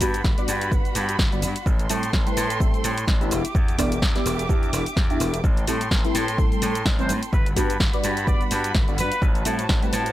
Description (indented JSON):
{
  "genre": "filtered disco house",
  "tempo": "127 BPM",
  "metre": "4/4",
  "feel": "swing 57% on 16ths",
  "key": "A dorian",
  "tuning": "A4 = 442 Hz",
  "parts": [
    { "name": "funky polysynth comp", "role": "accompaniment", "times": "0.0-10.0 s", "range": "G3 to E5", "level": "-27 LUFS", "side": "equal", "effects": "chorus, phaser, vintage 12-bit sampler grit, sidechain pumping" },
    { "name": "dark studio violin section", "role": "sustained chords", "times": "0.0-10.1 s", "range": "F#4 to D6", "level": "-31 LUFS", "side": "right 2 dB", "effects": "sidechain pumping" },
    { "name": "gritty slap bass", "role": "bass", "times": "0.0-10.1 s", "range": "E1 to A2", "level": "-27 LUFS", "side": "equal", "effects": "overdrive, sidechain pumping" },
    { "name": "electronic kick drum", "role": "drums", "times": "0.0-9.8 s", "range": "none", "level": "-22 LUFS", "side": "equal", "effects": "none" },
    { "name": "punchy analog drum machine", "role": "drums", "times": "0.0-10.1 s", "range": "hi-hat, shaker, snare drum", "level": "-28 LUFS", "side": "equal", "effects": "sidechain pumping on perc, sidechain pumping on hats" },
    { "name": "warm trumpet section", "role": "melody", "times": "7.0-9.3 s", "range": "B4 to D5", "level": "-30 LUFS", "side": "left 1 dB", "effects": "sidechain pumping, digital delay" }
  ],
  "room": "little or no reverb",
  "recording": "none",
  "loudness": "-20 LUFS",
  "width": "side -14 dB against mid",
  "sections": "0.0-10.1 A section",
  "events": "none",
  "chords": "0.0 Gmaj7; 1.7 Am7; 3.3 Em7; 5.4 Am7; 7.3 Gmaj7; 9.2 Am7"
}